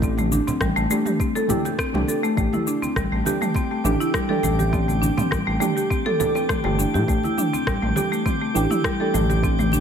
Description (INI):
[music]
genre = organic downtempo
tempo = 102 BPM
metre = 4/4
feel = straight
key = A minor pentatonic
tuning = A4 = 440 Hz
[part]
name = deep mellow chord stab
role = accompaniment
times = 0.0-9.8 s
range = E3 to G4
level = -27 LUFS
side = right 3 dB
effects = chorus, sidechain pumping, ping-pong delay
[part]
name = buzzing marimba with hard mallets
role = arpeggios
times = 0.0-9.8 s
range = G3 to A4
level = -23 LUFS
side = left 1 dB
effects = vintage 12-bit sampler grit, ping-pong delay
[part]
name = smooth gliding synth bass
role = bass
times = 0.0-9.8 s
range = G1 to A2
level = -24 LUFS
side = equal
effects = sidechain pumping
[part]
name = electronic kick drum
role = drums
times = 0.0-9.6 s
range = none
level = -26 LUFS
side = equal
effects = overdrive
[part]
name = organic electronic drum kit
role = drums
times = 0.0-9.8 s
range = cabasa, rim click, toms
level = -28 LUFS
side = right 1 dB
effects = overdrive
[part]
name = congas and bongos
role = percussion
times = 0.2-9.8 s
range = none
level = -31 LUFS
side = right 2 dB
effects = none
[part]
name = drifting glass-harmonics texture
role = texture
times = 3.1-9.8 s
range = G4 to G5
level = -31 LUFS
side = right 1 dB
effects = chorus, built-in reverb
[sound]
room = light reverb, digital ambience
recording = none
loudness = -19 LUFS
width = side -7 dB against mid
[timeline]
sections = 0.0-9.8 A section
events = none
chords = 0.0 A7sus4; 2.4 Am7; 7.1 A7sus4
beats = | 0.02 0.61 1.20 1.79 | 2.38 2.96 3.55 4.14 | 4.73 5.32 5.91 6.49 | 7.08 7.67 8.26 8.85 | 9.43